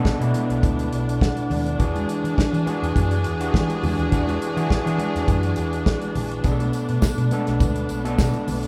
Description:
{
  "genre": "disco",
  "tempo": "103 BPM",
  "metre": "4/4",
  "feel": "straight",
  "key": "B dorian",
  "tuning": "A4 = 437 Hz",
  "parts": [
    { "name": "overdriven tine electric piano", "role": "accompaniment", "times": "0.0-8.7 s", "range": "B2 to F#5", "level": "-28 LUFS", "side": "equal", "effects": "none" },
    { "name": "rich studio string section", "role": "sustained chords", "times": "0.0-8.7 s", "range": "E3 to G#4", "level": "-31 LUFS", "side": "equal", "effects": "none" },
    { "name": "hollow-body short-scale fingered electric bass", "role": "bass", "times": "0.0-8.7 s", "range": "A#1 to E3", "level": "-27 LUFS", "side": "equal", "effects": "none" },
    { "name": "damped 70s drum kit", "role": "drums", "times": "0.1-8.7 s", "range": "hi-hat, kick drum, snare drum", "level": "-24 LUFS", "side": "equal", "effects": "none" },
    { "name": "congas", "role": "percussion", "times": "0.3-8.6 s", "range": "none", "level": "-34 LUFS", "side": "equal", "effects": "none" },
    { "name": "tambourine", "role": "percussion", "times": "6.4-8.6 s", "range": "none", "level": "-46 LUFS", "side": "equal", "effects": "none" }
  ],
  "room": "moderate large studio reverb, RT60 0.8 s",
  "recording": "band playing live in one room",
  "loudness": "-22 LUFS",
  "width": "mono",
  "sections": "0.0-8.7 A section",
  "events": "tine electric piano fill 0.9-1.8",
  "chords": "0.0 Bm7; 1.8 E9; 6.4 Bm7",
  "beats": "0.05 0.63 1.21 | 1.79 2.38 2.96 3.54 | 4.12 4.70 5.28 5.86 | 6.44 7.03 7.61 8.19"
}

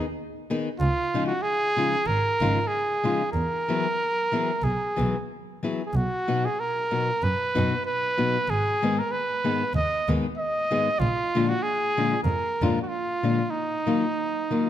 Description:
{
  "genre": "mexican folk, mariachi",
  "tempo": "95 BPM",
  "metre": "4/4",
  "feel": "swing 55% on 8ths, rubato",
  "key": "unclear",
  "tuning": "A4 = 440 Hz",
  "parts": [
    { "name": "warm trumpet", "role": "melody", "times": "0.0-14.7 s", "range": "Eb4 to Eb5", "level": "-25 LUFS", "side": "right 2 dB", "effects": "none" },
    { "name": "nylon-string guitar", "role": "accompaniment", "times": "0.0-14.7 s", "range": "Ab2 to Ab4", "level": "-28 LUFS", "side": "left 4 dB", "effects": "none" },
    { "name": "muted double bass", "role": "bass", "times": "0.8-12.7 s", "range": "Ab1 to F#2", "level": "-27 LUFS", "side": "right 1 dB", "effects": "none" }
  ],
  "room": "light reverb",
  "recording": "close, detailed microphones",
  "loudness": "-23 LUFS",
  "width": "side -11 dB against mid",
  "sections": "0.0-14.7 A section",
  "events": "none",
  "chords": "0.0 Abm/Eb; 0.8 Dbadd9; 3.3 Eadd9; 5.9 B; 8.5 Abm; 11.0 Bb7; 13.5 Ebmadd9",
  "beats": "0.16 | 0.80 1.42 2.06 2.69 | 3.33 3.97 4.62 5.27 | 5.92 6.57 7.21 7.85 | 8.48 9.11 9.73 10.36 | 10.99 11.62 12.25 12.88 | 13.51 14.14"
}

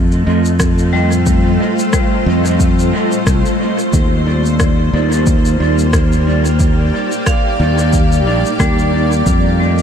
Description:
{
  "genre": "ambient dub",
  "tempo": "90 BPM",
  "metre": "4/4",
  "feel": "swing 57% on 16ths",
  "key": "unclear",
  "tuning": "A4 = 439 Hz",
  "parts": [
    { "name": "granular cloud pad", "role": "sustained chords", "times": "0.0-9.8 s", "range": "A3 to D5", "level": "-18 LUFS", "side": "equal", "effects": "built-in reverb" },
    { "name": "fingered electric bass", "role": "bass", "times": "0.0-9.8 s", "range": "Bb1 to F2", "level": "-14 LUFS", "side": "equal", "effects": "tube saturation" },
    { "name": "electronic shaker and rim click", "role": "drums", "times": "0.1-9.8 s", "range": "none", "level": "-26 LUFS", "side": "left 1 dB", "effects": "overdrive, dub echo" },
    { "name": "mellow electric guitar", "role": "stabs", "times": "0.3-9.7 s", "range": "G3 to Eb5", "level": "-21 LUFS", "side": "right 5 dB", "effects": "lush chorus, dub echo" },
    { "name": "electronic kick drum", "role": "drums", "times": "0.6-9.4 s", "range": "none", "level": "-16 LUFS", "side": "equal", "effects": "overdrive" },
    { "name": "vibraphone with medium hard mallets", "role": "arpeggios", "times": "0.9-9.8 s", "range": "G3 to F5", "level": "-22 LUFS", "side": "left 4 dB", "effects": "ping-pong delay" }
  ],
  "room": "light reverb, digital ambience",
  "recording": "none",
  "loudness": "-11 LUFS",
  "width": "side -8 dB against mid",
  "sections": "0.0-9.8 A section",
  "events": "none",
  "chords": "0.0 F7; 3.9 Ebmaj7; 9.3 F7",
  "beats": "0.60 | 1.26 1.93 2.60 3.26 | 3.93 4.60 5.26 5.93 | 6.60 7.26 7.93 8.60 | 9.26"
}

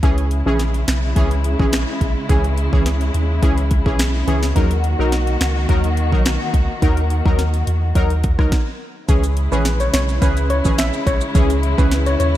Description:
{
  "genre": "dancehall",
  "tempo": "106 BPM",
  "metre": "4/4",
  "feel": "straight",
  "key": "C# dorian",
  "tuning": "A4 = 440 Hz",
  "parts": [
    { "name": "synth brass stab", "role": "accompaniment", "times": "0.0-11.9 s", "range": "E3 to A#4", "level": "-23 LUFS", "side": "equal", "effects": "chorus" },
    { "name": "dark studio string section", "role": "sustained chords", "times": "0.0-12.4 s", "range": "C#3 to F#4", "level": "-25 LUFS", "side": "left 1 dB", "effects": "sidechain pumping" },
    { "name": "punchy sub bass", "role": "bass", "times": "0.0-12.4 s", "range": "A#1 to E2", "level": "-18 LUFS", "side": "equal", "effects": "none" },
    { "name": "afro-pop drum kit", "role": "drums", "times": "0.0-12.3 s", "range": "finger snaps, hi-hat, kick drum, rim click, snare drum", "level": "-19 LUFS", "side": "equal", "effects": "none" },
    { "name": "maracas", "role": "percussion", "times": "9.1-12.4 s", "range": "none", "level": "-37 LUFS", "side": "right 8 dB", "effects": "none" },
    { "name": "steel pan", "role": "melody", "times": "9.5-12.3 s", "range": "B4 to E5", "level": "-23 LUFS", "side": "left 1 dB", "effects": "diffuse ambient delay" }
  ],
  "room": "light reverb, small room ambience",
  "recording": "none",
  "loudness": "-15 LUFS",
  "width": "side -13 dB against mid",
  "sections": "0.0-9.1 A section; 9.1-12.4 B section",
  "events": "stop 8.5-9.1",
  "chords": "0.0 C#m; 4.6 D#m; 9.1 C#m",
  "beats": "| 0.03 0.60 1.16 1.73 | 2.29 2.86 3.43 3.99 | 4.56 5.12 5.69 6.26 | 6.82 7.39 7.96 8.52 | 9.09 9.65 10.22 10.79 | 11.35 11.92"
}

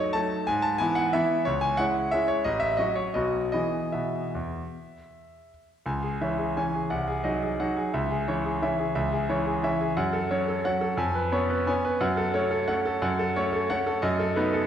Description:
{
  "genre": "classical, piano waltz",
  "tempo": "147-190 BPM",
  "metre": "3/4",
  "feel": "rubato",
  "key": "E major, C# minor from 5.9 s",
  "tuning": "A4 = 440 Hz",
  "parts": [
    { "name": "bright concert grand piano", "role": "solo", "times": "0.0-14.7 s", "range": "A1 to A5", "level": "-24 LUFS", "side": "equal", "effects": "none" }
  ],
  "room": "wet recital hall reverb, RT60 1.6 s",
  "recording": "heard from further back in the room",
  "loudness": "-24 LUFS",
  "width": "side -9 dB against mid",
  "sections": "0.0-5.9 A section; 5.9-14.7 B section",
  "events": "none",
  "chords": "0.5 E/G#; 1.5 C#m; 2.5 F#m/A; 3.2 B; 3.6 E; 5.9 C#m; 6.9 G#7/B#; 7.9 C#m; 10.0 F#m; 11.0 C#7/E#; 12.0 F#m; 14.0 B7/F#",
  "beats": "0.15 | 0.48 0.81 1.14 | 1.47 1.79 2.13 | 2.46 2.80 3.17 | 3.55 3.94 4.35 | 4.73 5.10 5.49 | 5.86 6.21 6.56 | 6.90 7.24 7.59 | 7.94 8.27 8.62 | 8.96 9.29 9.64 | 9.97 10.31 10.65 | 10.98 11.32 11.67 | 12.01 12.35 12.69 | 13.03 13.36 13.70 | 14.03 14.36"
}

